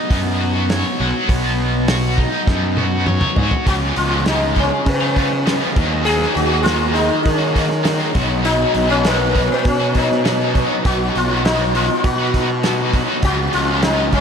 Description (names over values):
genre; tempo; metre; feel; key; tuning
psychedelic rock; 100 BPM; 4/4; straight; B lydian; A4 = 440 Hz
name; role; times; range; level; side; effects
cranked stack guitar; riff; 0.0-14.2 s; B2 to C#5; -20 LUFS; equal; overdrive, harmonic tremolo
fuzz picked electric bass; bass; 0.1-14.2 s; B1 to D#3; -20 LUFS; equal; overdrive
cloth-damped thuddy drum kit; drums; 0.1-14.2 s; hi-hat, kick drum, snare drum, toms; -22 LUFS; equal; none
sitar; melody; 3.7-14.2 s; A#3 to G#4; -19 LUFS; left 2 dB; diffuse ambient delay
room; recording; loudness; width
moderate huge ambient reverb, RT60 7.9 s; dreamy mix soaked in reverb; -15 LUFS; side -7 dB against mid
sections
0.0-3.7 A section; 3.7-14.2 B section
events
drum fill 2.5-3.7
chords
0.0 Badd9; 3.7 C#5; 5.8 D#m; 8.2 B; 13.2 C#5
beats
0.10 0.70 | 1.29 1.88 2.48 3.08 | 3.67 4.27 4.87 5.46 | 6.06 6.66 7.26 7.86 | 8.46 9.05 9.65 10.25 | 10.85 11.44 12.04 12.64 | 13.23 13.83